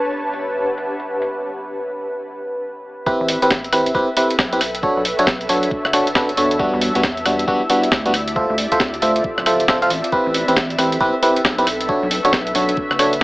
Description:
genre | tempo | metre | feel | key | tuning
UK garage, two-step garage | 136 BPM | 4/4 | swing 62% on 16ths | A dorian | A4 = 438 Hz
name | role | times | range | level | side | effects
warm analog pad | sustained chords | 0.0-13.2 s | B4 to E5 | -26 LUFS | left 1 dB | chorus, sidechain pumping
ethereal airy pad | texture | 0.0-13.2 s | C4 to A5 | -27 LUFS | equal | ensemble chorus, built-in reverb, tremolo, sidechain pumping
breakbeat sampler-style drum kit | drums | 0.1-13.2 s | hi-hat, rim click, snare drum | -20 LUFS | equal | low-pass filter on hats, low-pass filter on snare
FM electric piano | stabs | 3.1-13.2 s | G3 to F5 | -17 LUFS | equal | chorus, dub echo
electronic kick drum | drums | 3.1-13.2 s | none | -29 LUFS | equal | none
rubbery square bass | bass | 3.2-13.2 s | D1 to E2 | -29 LUFS | equal | none
room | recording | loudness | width
light reverb | AM radio sound | -16 LUFS | side -20 dB against mid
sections
0.0-3.1 A section; 3.1-13.2 B section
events
break 1.3-3.1; drop 3.1-13.2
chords
0.0 Em9; 3.1 Am9; 4.6 Bm9; 6.6 Em9; 8.1 Dm9; 10.1 Am9; 11.7 Bm9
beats
0.42 0.86 | 1.30 1.74 2.18 2.62 | 3.06 3.51 3.95 4.39 | 4.83 5.27 5.71 6.15 | 6.59 7.04 7.48 7.92 | 8.36 8.80 9.24 9.68 | 10.12 10.56 11.01 11.45 | 11.89 12.33 12.77 13.21

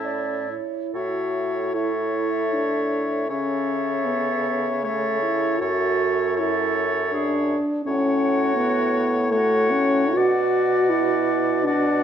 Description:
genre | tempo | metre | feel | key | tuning
classical, slow romantic movement for wind quintet | 78 BPM | 3/4 | uneven beats, rubato | A major | A4 = 440 Hz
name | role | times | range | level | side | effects
silver concert flute | melody | 0.0-12.0 s | E5 to A5 | -30 LUFS | left 8 dB | none
clear oboe | second line | 0.0-12.0 s | E4 to D5 | -28 LUFS | left 3 dB | none
mellow French horn | accompaniment | 0.0-12.0 s | A3 to F#4 | -23 LUFS | equal | none
mellow clarinet | accompaniment | 0.0-12.0 s | F#4 to D5 | -29 LUFS | right 6 dB | none
warm bassoon | bass | 0.0-12.0 s | F#2 to C#3 | -26 LUFS | right 2 dB | none
room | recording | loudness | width
wet recital hall reverb, RT60 1.3 s | dark, warm production | -20 LUFS | side -9 dB against mid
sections
0.9-12.0 A section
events
none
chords
0.0 A; 3.3 A/C#; 5.6 F#m7; 7.9 F#m/A; 10.2 Bm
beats
0.07 | 0.95 1.75 2.54 | 3.31 4.07 4.85 | 5.61 6.38 7.13 | 7.87 8.58 9.32 | 10.15 10.92 11.67

